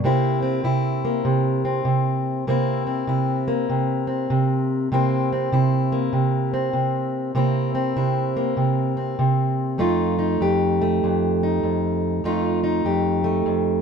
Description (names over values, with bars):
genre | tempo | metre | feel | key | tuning
blues | 98 BPM | 4/4 | swing 64% on 8ths | C mixolydian | A4 = 441 Hz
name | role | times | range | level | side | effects
fingerpicked plugged-in steel-string acoustic guitar | solo | 0.0-13.8 s | F2 to G4 | -19 LUFS | equal | none
room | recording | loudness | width
wet booth ambience, RT60 0.2 s | dark, warm production | -19 LUFS | side -6 dB against mid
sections
0.0-13.8 A section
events
none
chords
0.0 C7; 9.8 F7